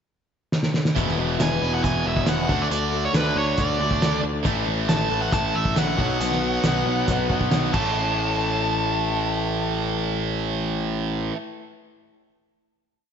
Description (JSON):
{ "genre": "classic rock", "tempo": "137 BPM", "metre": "4/4", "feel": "straight", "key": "A major", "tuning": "A4 = 440 Hz", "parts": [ { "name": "cloth-damped thuddy drum kit", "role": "drums", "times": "0.5-7.8 s", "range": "crash cymbal, hi-hat, kick drum, snare drum", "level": "-25 LUFS", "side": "equal", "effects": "none" }, { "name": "picked twelve-string acoustic guitar", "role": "accompaniment", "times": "1.0-11.5 s", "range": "E2 to C#5", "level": "-34 LUFS", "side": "left 7 dB", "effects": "slapback echo" }, { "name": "overdriven electric guitar", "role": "riff", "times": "1.0-11.4 s", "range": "E2 to D4", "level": "-29 LUFS", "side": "left 10 dB", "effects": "none" }, { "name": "tight distorted guitar", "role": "riff", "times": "1.0-11.4 s", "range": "E2 to D4", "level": "-27 LUFS", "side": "right 10 dB", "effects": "distortion" }, { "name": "fuzz picked electric bass", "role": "bass", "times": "1.0-11.3 s", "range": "E1 to D2", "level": "-27 LUFS", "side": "equal", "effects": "overdrive" }, { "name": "nasal lead guitar with a parked wah", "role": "melody", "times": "1.4-11.3 s", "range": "B4 to A5", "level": "-27 LUFS", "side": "right 2 dB", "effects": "overdrive, slapback echo" } ], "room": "moderate lush hall reverb, RT60 1.8 s, studio reverb", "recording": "big arena sound, nothing above 7.7 kHz", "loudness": "-20 LUFS", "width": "side -7 dB against mid", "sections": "0.0-1.0 pickup bar; 1.0-8.0 pre-chorus; 8.0-11.4 final hit", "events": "drum fill 0.5-1.0, 7.7", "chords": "0.0 N.C.; 1.0 E; 2.5 D; 4.5 A; 6.0 Badd9; 7.7 A" }